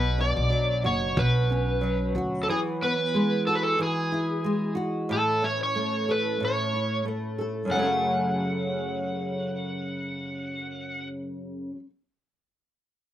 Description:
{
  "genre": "acoustic pop",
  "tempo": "92 BPM",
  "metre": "4/4",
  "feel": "swing 55% on 16ths",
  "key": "F# minor",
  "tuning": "A4 = 438 Hz",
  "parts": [
    { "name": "overdriven slide guitar", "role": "melody", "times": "0.0-11.1 s", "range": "G#4 to F#5", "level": "-27 LUFS", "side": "equal", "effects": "none" },
    { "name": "nylon-string guitar", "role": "accompaniment", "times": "0.0-11.9 s", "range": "F#2 to A4", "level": "-28 LUFS", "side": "equal", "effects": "double-tracked left and right, slapback echo" },
    { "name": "upright bass", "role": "bass", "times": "0.0-2.4 s", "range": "F#1 to D2", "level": "-26 LUFS", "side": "equal", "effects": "none" },
    { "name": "kick drum", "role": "drums", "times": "1.2-1.3 s", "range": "none", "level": "-27 LUFS", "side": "equal", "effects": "none" }
  ],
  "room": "little or no reverb",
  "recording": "recorded outdoors, with no room sound",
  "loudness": "-24 LUFS",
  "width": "side -12 dB against mid",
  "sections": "0.0-7.7 A section; 7.7-10.3 B section",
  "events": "none",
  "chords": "0.0 Bmadd9; 2.5 Eadd9; 5.1 A; 7.7 F#m"
}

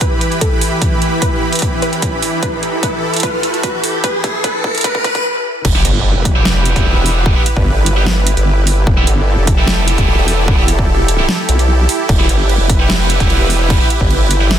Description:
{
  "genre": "heavy wobble dubstep",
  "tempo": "149 BPM",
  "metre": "4/4",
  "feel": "half-time",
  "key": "E phrygian",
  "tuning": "A4 = 440 Hz",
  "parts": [
    { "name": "wide unison pluck", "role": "melody", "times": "0.0-5.2 s", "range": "A4 to B4", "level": "-22 LUFS", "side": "equal", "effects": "tape echo" },
    { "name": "supersaw pad", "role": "sustained chords", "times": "0.0-14.6 s", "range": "E3 to B5", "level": "-19 LUFS", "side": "right 1 dB", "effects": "sidechain pumping" },
    { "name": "dubstep drum kit", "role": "drums", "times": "0.0-14.6 s", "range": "crash cymbal, hi-hat, snare drum", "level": "-19 LUFS", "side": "right 2 dB", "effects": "none" },
    { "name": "electronic kick drum", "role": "drums", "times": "0.0-14.1 s", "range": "none", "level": "-16 LUFS", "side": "equal", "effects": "none" },
    { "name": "riser and impact", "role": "sound effects", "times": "0.9-7.3 s", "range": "none", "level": "-22 LUFS", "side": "equal", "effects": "none" },
    { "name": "formant-sweep wobble bass", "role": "bass", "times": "5.6-14.6 s", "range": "E1 to B1", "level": "-14 LUFS", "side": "equal", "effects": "chorus, overdrive" },
    { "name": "high-gain distorted guitar", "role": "stabs", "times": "5.8-14.5 s", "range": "B3 to G4", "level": "-20 LUFS", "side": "right 2 dB", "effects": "distortion, tape echo" }
  ],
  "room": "digital ambience",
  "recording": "dense, heavily limited modern master, high-pass filter",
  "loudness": "-11 LUFS",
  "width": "side -10 dB against mid",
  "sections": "0.0-5.6 A section; 5.6-14.6 B section",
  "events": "build-up 0.0-5.6; filter sweep 0.0-5.6; riser 0.9-5.2; drum fill 2.4-5.2; stop 5.2-5.6; drop 5.6-14.6; impact 5.6-7.3",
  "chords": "0.0 Em"
}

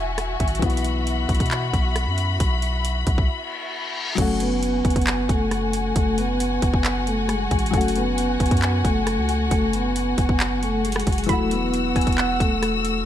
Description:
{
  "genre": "hip hop, trap",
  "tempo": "135 BPM",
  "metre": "4/4",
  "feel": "half-time",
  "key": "F# minor",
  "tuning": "A4 = 440 Hz",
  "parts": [
    { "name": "warm grand piano", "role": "accompaniment", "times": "0.0-13.1 s", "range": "E3 to F#4", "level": "-31 LUFS", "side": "left 7 dB", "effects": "low-pass filter" },
    { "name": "dark studio string section", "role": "sustained chords", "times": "0.0-13.1 s", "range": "F#4 to E6", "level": "-27 LUFS", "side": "left 3 dB", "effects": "none" },
    { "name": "long sustained 808-style bass", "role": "bass", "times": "0.0-13.0 s", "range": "E1 to B2", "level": "-26 LUFS", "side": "equal", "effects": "none" },
    { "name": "trap drum kit", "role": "drums", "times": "0.2-12.9 s", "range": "crash cymbal, handclaps, hi-hat, kick drum, rim click", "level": "-23 LUFS", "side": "equal", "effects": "none" },
    { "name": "reverse cymbal", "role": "sound effects", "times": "3.5-4.2 s", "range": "none", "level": "-30 LUFS", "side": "left 3 dB", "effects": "none" },
    { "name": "vibraphone with soft mallets", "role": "melody", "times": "4.2-13.0 s", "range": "G#3 to B4", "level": "-24 LUFS", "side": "equal", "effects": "low-pass filter" },
    { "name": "soft round pluck", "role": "second line", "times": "11.3-13.0 s", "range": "F#5 to B5", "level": "-29 LUFS", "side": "right 5 dB", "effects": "chorus, tape echo" }
  ],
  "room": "light reverb, digital ambience",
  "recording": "none",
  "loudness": "-19 LUFS",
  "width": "side -11 dB against mid",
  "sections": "0.0-4.2 A section; 4.2-13.1 B section",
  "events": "break 3.3-4.2; reverse cymbal 3.5-4.2",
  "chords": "0.0 Eadd9; 0.6 Bsus4; 4.2 F#madd9; 11.3 Eadd9"
}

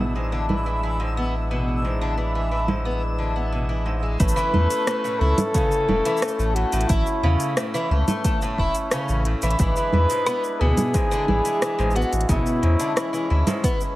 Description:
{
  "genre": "folktronica",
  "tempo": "89 BPM",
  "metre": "4/4",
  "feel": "straight",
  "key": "A major",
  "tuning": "A4 = 440 Hz",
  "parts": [
    { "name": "hand-pumped harmonium", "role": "sustained chords", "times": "0.0-14.0 s", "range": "G#3 to E4", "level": "-31 LUFS", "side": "left 1 dB", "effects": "none" },
    { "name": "fingerpicked twelve-string acoustic guitar", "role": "arpeggios", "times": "0.0-13.8 s", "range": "G#2 to E4", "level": "-26 LUFS", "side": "equal", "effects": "tape echo" },
    { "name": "warm sub bass", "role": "bass", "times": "0.0-13.4 s", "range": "E1 to E2", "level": "-22 LUFS", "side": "equal", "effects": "none" },
    { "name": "twinkling granular texture", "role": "texture", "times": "0.0-4.2 s", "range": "E6", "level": "-37 LUFS", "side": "equal", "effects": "built-in reverb" },
    { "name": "organic electronic drum kit", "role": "drums", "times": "0.2-13.9 s", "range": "congas, hi-hat, rim click, shaker", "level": "-27 LUFS", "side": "right 1 dB", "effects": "overdrive, low-pass filter on perc, low-pass filter on hats, low-pass filter on snare" },
    { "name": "mellow flugelhorn", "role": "melody", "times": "4.2-13.6 s", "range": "E4 to B4", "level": "-24 LUFS", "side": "left 1 dB", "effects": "tape echo" },
    { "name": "electronic kick drum", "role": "drums", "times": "4.2-13.8 s", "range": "none", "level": "-23 LUFS", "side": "equal", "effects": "overdrive" }
  ],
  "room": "light reverb, studio ambience",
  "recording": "vinyl crackle",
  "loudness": "-20 LUFS",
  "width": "side -16 dB against mid",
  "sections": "0.0-4.2 A section; 4.2-14.0 B section",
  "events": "none",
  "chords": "0.0 E7/A; 4.2 A; 9.6 E7/A"
}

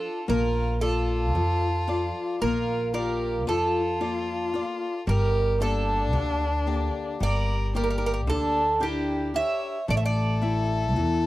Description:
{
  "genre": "greek folk, Greek bouzouki band",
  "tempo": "112 BPM (eighths)",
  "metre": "9/8",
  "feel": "straight",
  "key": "unclear",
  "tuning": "A4 = 440 Hz",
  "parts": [
    { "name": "Greek bouzouki", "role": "melody", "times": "0.0-11.3 s", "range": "G4 to E5", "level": "-28 LUFS", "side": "right 3 dB", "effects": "none" },
    { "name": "clear violin", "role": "second line", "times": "0.0-11.3 s", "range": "D4 to C#5", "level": "-33 LUFS", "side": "left 3 dB", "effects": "none" },
    { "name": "picked swing-style acoustic guitar", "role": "accompaniment", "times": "0.0-11.3 s", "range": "D3 to E5", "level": "-30 LUFS", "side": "left 4 dB", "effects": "none" },
    { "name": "upright bass", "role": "bass", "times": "0.3-11.3 s", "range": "G1 to F2", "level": "-27 LUFS", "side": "equal", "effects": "none" }
  ],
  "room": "light reverb",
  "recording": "dry, close 1970s-style studio recording",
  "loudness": "-23 LUFS",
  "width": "side -16 dB against mid",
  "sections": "0.0-11.3 A section",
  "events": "none",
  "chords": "0.3 Bb; 5.1 Gm; 9.9 A5"
}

